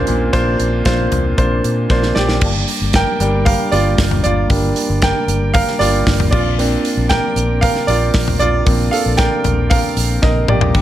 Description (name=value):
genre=piano-driven pop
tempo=115 BPM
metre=4/4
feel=straight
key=Bb major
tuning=A4 = 440 Hz
part: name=clear upright piano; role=accompaniment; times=0.0-10.8 s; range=Bb2 to G5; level=-17 LUFS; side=right 2 dB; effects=none
part: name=percussive tonewheel organ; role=sustained chords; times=0.0-10.8 s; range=G3 to D4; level=-25 LUFS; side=left 2 dB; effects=fast rotary speaker
part: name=vintage muted fingered electric bass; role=bass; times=0.0-10.8 s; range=G1 to Bb2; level=-18 LUFS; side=equal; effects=none
part: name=modern studio drum kit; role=drums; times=0.1-10.8 s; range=crash cymbal, hi-hat, kick drum, snare drum, splash cymbal, toms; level=-18 LUFS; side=left 1 dB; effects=none
room=studio ambience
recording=none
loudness=-13 LUFS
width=side -12 dB against mid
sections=0.0-2.4 A section; 2.4-10.8 B section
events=drum fill 1.9-2.4, 10.2-10.7; upright piano solo 2.4-10.8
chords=0.0 Bbadd9; 2.4 Gm; 6.3 Bbadd9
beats=| 0.34 0.86 1.38 1.90 | 2.42 2.94 3.46 3.98 | 4.50 5.02 5.54 6.06 | 6.58 7.10 7.62 8.15 | 8.67 9.19 9.71 10.23 | 10.75